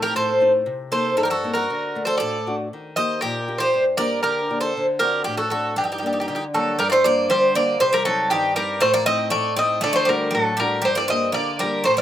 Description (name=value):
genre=greek folk, Greek bouzouki band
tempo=118 BPM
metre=2/4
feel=straight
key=G harmonic minor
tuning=A4 = 441 Hz
part: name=Greek bouzouki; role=melody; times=0.0-12.0 s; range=G4 to Eb5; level=-20 LUFS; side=equal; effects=none
part: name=Greek bouzouki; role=second line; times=0.0-12.0 s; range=Eb3 to C5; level=-27 LUFS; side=equal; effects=none
part: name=nylon-string guitar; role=accompaniment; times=0.0-12.0 s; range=G2 to G4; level=-27 LUFS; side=left 2 dB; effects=slapback echo
room=little or no reverb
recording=recorded outdoors, with no room sound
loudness=-18 LUFS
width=side -11 dB against mid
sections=0.0-6.8 A section; 6.8-12.0 B section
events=none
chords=0.0 Adim; 0.7 Cm7; 1.7 D; 2.7 Eb; 3.7 Gm; 4.8 D7; 5.8 Gm; 7.8 Cm; 8.8 Adim; 9.8 D; 10.9 Gm